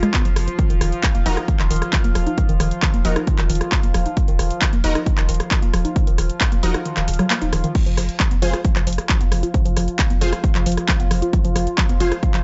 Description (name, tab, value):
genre	driving peak-time techno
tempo	134 BPM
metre	4/4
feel	straight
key	unclear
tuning	A4 = 440 Hz
part	woody wave-folded pluck	riff	0.0-12.4 s	Db3 to F4	-28 LUFS	equal	chorus, sidechain pumping, analog delay
part	warm sub bass	bass	0.0-12.4 s	Eb1 to F1	-25 LUFS	equal	overdrive, sidechain pumping, low-pass filter
part	analog drone	drone	0.0-12.4 s	F3 to F4	-31 LUFS	equal	chorus, sidechain pumping
part	techno drum kit	drums	0.0-12.4 s	crash cymbal, handclaps, hi-hat, rim click	-27 LUFS	equal	sidechain pumping on hats, sidechain pumping on cymbals
part	electronic kick drum	drums	0.1-12.3 s	none	-21 LUFS	equal	none
part	rave stab	stabs	1.3-12.1 s	Eb4 to C5	-28 LUFS	equal	chorus, built-in reverb, phaser, sidechain pumping, analog delay
room	little or no reverb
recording	dry, gritty hardware recording, nothing above 7.9 kHz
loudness	-19 LUFS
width	mono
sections	0.0-12.4 A section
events	kick drops out 6.9-7.8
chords	0.0 N.C.; 0.6 Ebm; 7.8 Fm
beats	0.14 | 0.59 1.03 1.48 1.93 | 2.38 2.83 3.27 3.72 | 4.17 4.62 5.06 5.51 | 5.96 6.41 6.86 7.30 | 7.75 8.20 8.65 9.09 | 9.54 9.99 10.44 10.88 | 11.33 11.78 12.23